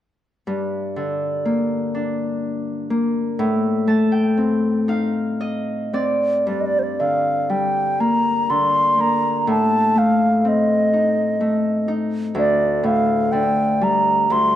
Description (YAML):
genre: celtic folk, Celtic slow air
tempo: 61 BPM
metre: 3/4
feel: rubato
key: G minor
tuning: A4 = 440 Hz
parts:
  - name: Celtic harp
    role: accompaniment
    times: 0.5-14.6 s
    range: D2 to A5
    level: -19 LUFS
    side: left 1 dB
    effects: none
  - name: baroque flute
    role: melody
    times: 6.5-14.6 s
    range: C5 to C6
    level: -18 LUFS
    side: equal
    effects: none
room: moderate concert hall reverb, RT60 1.9 s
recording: dark, warm production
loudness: -17 LUFS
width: side -12 dB against mid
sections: 0.5-6.5 A section; 6.5-14.6 B section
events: harp fill 3.4-6.5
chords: 0.5 Gm; 3.4 Adim; 6.5 Gm; 9.5 Adim; 12.4 Dsus4